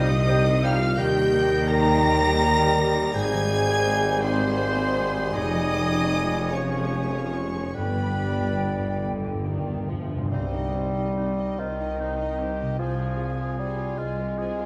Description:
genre	classical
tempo	46-58 BPM (dotted quarters)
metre	6/8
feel	rubato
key	C minor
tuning	A4 = 438 Hz
part	rich chamber violin section	melody	0.0-14.7 s	Eb5 to Bb6	-36 LUFS	equal	none
part	mellow hollow flute section	second line	0.0-14.5 s	C5 to Ab5	-37 LUFS	equal	none
part	rich studio violin section	second line	0.0-14.7 s	Ab4 to Bb5	-39 LUFS	equal	none
part	warm clarinet	second line	0.0-14.5 s	Eb4 to D5	-37 LUFS	equal	none
part	warm oboe	second line	0.0-14.7 s	Eb4 to Bb5	-35 LUFS	equal	none
part	rich studio viola section	accompaniment	0.0-14.7 s	Db3 to Ab4	-37 LUFS	equal	none
part	warm bassoon	accompaniment	0.0-14.7 s	Eb3 to Ab3	-34 LUFS	equal	none
part	mellow French horn section	sustained chords	0.0-14.7 s	B3 to Bb4	-32 LUFS	equal	none
part	concert harp	arpeggios	0.0-14.7 s	F2 to D6	-34 LUFS	equal	none
part	dark trumpet section	stabs	0.0-9.0 s	B4 to Bb5	-32 LUFS	equal	none
part	rich chamber double bass section	bass	0.0-14.7 s	F1 to Eb2	-33 LUFS	equal	none
part	rich symphonic cello section	bass	0.0-14.7 s	C2 to Eb3	-34 LUFS	equal	none
part	warm tuba	bass	0.0-10.1 s	F1 to Eb2	-33 LUFS	equal	none
part	timpani	percussion	7.8-11.5 s	G2 to C3	-34 LUFS	equal	none
room	moderate scoring stage reverb, RT60 1.6 s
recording	none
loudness	-24 LUFS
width	mono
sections	0.0-10.3 A section; 10.3-14.7 B section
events	timpani fill 7.7-10.3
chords	0.0 Cm; 1.0 Eb; 3.1 Abmaj7; 5.3 Db/F; 7.7 G; 10.3 Cm; 12.8 Fm/C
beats	| 0.98 2.04 | 3.15 4.22 | 5.34 6.52 | 7.74 9.03 | 10.32 11.59 | 12.79 13.99

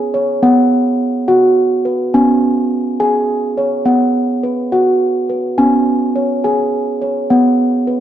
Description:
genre	world meditative, meditative tuned percussion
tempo	70 BPM (dotted quarters)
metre	6/8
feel	straight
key	unclear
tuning	A4 = 442 Hz
part	steel tongue drum	solo	0.0-8.0 s	B3 to G#5	-12 LUFS	equal	none
room	wet echo chamber reverb, RT60 1.8 s, small room ambience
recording	dark, warm production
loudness	-12 LUFS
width	side -11 dB against mid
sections	0.0-8.0 A section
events	none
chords	0.4 B5; 2.1 C#5/B; 3.9 B5; 5.6 C#5/B; 7.3 B5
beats	| 0.43 1.28 | 2.14 3.00 | 3.86 4.72 | 5.58 6.44 | 7.30

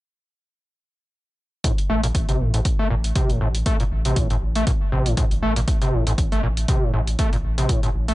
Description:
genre	acid house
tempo	119 BPM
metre	4/4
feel	swing 55% on 16ths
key	A phrygian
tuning	A4 = 440 Hz
part	overdriven acid bass	riff	1.6-8.1 s	A2 to A3	-24 LUFS	equal	distortion, tube saturation, wide subtle chorus, tape echo
part	electronic hi-hat	drums	1.6-8.1 s	none	-30 LUFS	right 1 dB	none
part	electronic kick drum	drums	1.6-7.8 s	none	-22 LUFS	equal	none
part	saturated sub bass	bass	1.9-8.1 s	A1	-24 LUFS	equal	sidechain pumping
room	light reverb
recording	nothing above 10.5 kHz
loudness	-19 LUFS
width	side -18 dB against mid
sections	1.6-8.1 A section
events	none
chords	1.6 Am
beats	| 1.64 2.15 2.65 3.16 | 3.66 4.17 4.67 5.17 | 5.68 6.18 6.69 7.19 | 7.69

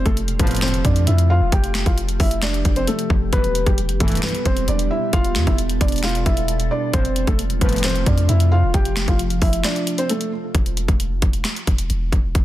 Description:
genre	hip hop, trap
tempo	133 BPM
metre	4/4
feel	half-time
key	E phrygian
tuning	A4 = 440 Hz
part	felt-muted upright piano	melody	0.0-10.3 s	G3 to G5	-24 LUFS	equal	digital delay
part	glassy FM pad	sustained chords	0.0-10.5 s	B2 to A4	-28 LUFS	right 2 dB	ensemble chorus, built-in reverb
part	long sustained 808-style bass	bass	0.0-12.4 s	E1 to F2	-21 LUFS	equal	none
part	trap drum kit	drums	0.1-12.4 s	finger snaps, hi-hat, kick drum, snare drum	-20 LUFS	equal	none
part	analog synth brass	stabs	0.4-7.9 s	B1 to F3	-28 LUFS	equal	chorus, digital delay
room	digital ambience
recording	dense, heavily limited modern master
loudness	-17 LUFS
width	side -14 dB against mid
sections	0.0-10.5 A section; 10.5-12.4 B section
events	break 9.6-10.5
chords	0.0 Em; 10.5 N.C.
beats	0.17 0.62 1.07 | 1.52 1.97 2.43 2.88 | 3.33 3.78 4.23 4.68 | 5.13 5.58 6.04 6.49 | 6.94 7.39 7.84 8.29 | 8.74 9.19 9.64 10.10 | 10.55 11.00 11.45 11.90 | 12.35

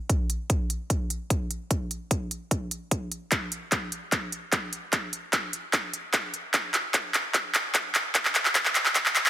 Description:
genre	future bass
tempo	149 BPM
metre	4/4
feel	half-time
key	none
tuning	none
part	electronic kick drum	drums	0.1-9.0 s	none	-29 LUFS	equal	none
part	trap drum kit	drums	0.1-9.3 s	handclaps, hi-hat	-24 LUFS	equal	overdrive
room	light reverb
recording	dense, heavily limited modern master, high-pass filter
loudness	-25 LUFS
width	side -12 dB against mid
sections	0.0-9.3 A section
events	build-up 0.0-9.3; filter sweep 0.0-9.3; drum fill 3.3-9.3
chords	none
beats	| 0.10 0.50 0.90 1.30 | 1.71 2.11 2.51 2.92 | 3.32 3.72 4.12 4.53 | 4.93 5.33 5.73 6.14 | 6.54 6.94 7.34 7.75 | 8.15 8.55 8.96

